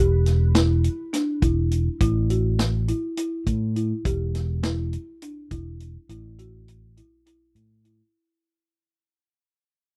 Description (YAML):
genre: progressive instrumental, band music in an uneven meter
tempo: 206 BPM (eighths)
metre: 7/8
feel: straight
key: unclear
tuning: A4 = 441 Hz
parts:
  - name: folk marimba with soft mallets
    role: arpeggios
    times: 0.0-8.0 s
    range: D4 to G4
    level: -31 LUFS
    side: equal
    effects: none
  - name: fingered electric bass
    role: bass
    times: 0.0-8.0 s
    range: E1 to A2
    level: -25 LUFS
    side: equal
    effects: none
  - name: vintage drum kit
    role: drums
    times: 0.3-8.0 s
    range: hi-hat, kick drum, snare drum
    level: -27 LUFS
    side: equal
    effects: none
room: little or no reverb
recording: dry, close 1970s-style studio recording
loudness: -23 LUFS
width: mono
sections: 0.0-8.1 A section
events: fade-out 0.0-8.1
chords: 0.0 Em; 2.0 A5; 4.1 Em; 6.1 A5